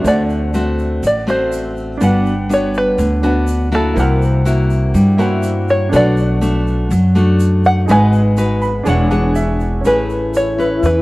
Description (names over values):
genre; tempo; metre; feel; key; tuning
bossa nova; 122 BPM; 4/4; straight; unclear; A4 = 440 Hz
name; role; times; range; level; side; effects
open-back banjo; melody; 0.0-11.0 s; A4 to G#5; -17 LUFS; equal; none
clear grand piano; accompaniment; 0.0-11.0 s; C#4 to B5; -24 LUFS; right 2 dB; none
nylon-string guitar; accompaniment; 0.0-11.0 s; A2 to C#5; -17 LUFS; left 1 dB; none
upright bass; bass; 0.0-11.0 s; E1 to G2; -16 LUFS; equal; none
egg shaker; percussion; 0.0-11.0 s; none; -40 LUFS; right 4 dB; none
mellow wooden-headed alto flute; second line; 9.9-11.0 s; E4; -20 LUFS; left 3 dB; none
room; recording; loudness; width
light reverb; worn, warbling old tape, cassette tape, warbly pitch drift; -12 LUFS; side -20 dB against mid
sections
0.0-9.8 A section; 9.8-11.0 B section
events
five-string banjo solo 0.0-9.8; grand piano fill 8.4-9.8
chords
0.0 D7; 2.0 Gmaj7; 4.0 C7#11; 5.9 Bm7; 7.9 G#m7; 8.9 E13; 9.8 Amaj9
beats
| 0.05 0.54 1.03 1.52 | 2.01 2.50 2.99 3.48 | 3.97 4.46 4.95 5.44 | 5.93 6.42 6.91 7.40 | 7.89 8.38 8.87 9.36 | 9.85 10.34 10.83